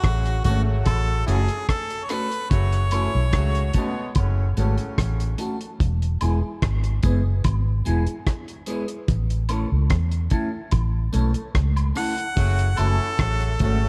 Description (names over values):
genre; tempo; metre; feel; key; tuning
roots reggae; 73 BPM; 4/4; straight; F# minor; A4 = 442 Hz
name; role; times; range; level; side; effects
clear harmonica; melody; 0.0-4.1, 12.0-13.9 s; F#4 to F#5; -30 LUFS; equal; dub echo
warm horn section; second line; 0.0-5.3, 12.4-13.9 s; A2 to F#4; -35 LUFS; equal; dub echo
vintage muted fingered electric bass; bass; 0.0-13.9 s; E1 to E2; -24 LUFS; equal; none
deep reggae drum kit; drums; 0.0-13.8 s; hi-hat, kick drum, rim click; -26 LUFS; equal; none
mellow electric guitar; accompaniment; 0.5-13.8 s; G#3 to A4; -33 LUFS; equal; phaser, dub echo
tambourine and woodblock; percussion; 0.5-13.8 s; none; -40 LUFS; equal; none
room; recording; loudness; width
light reverb; dark, warm production; -23 LUFS; mono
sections
0.0-13.9 A section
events
none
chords
0.0 F#m; 5.8 E; 9.1 A; 12.4 F#m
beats
0.04 0.86 1.68 | 2.51 3.33 4.15 4.97 | 5.79 6.62 7.44 8.26 | 9.08 9.90 10.72 11.55 | 12.37 13.19